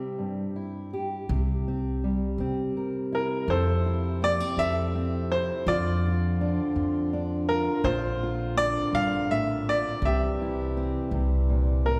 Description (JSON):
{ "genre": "acoustic folk-pop ballad", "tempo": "55 BPM (dotted quarters)", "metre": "6/8", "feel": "straight", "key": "unclear", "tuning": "A4 = 440 Hz", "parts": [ { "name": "bright grand piano", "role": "melody", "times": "0.0-12.0 s", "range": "F4 to F5", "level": "-30 LUFS", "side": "equal", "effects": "none" }, { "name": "fingerpicked steel-string acoustic guitar", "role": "accompaniment", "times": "0.0-12.0 s", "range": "F2 to Bb4", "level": "-33 LUFS", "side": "equal", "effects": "none" }, { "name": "upright bass", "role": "bass", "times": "1.3-12.0 s", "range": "Bb1 to C3", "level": "-30 LUFS", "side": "equal", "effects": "none" }, { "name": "hand-pumped harmonium", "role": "sustained chords", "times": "3.5-12.0 s", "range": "C3 to Bb4", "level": "-38 LUFS", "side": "equal", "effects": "none" } ], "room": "wet scoring stage reverb, RT60 2.1 s", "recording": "heard from further back in the room", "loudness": "-27 LUFS", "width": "mono", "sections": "0.0-1.3 A section; 1.3-3.5 B section; 3.5-12.0 C section", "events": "none", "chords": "0.0 C; 3.5 Fmaj7; 5.7 Dm/F; 7.9 Bbadd9; 10.0 C" }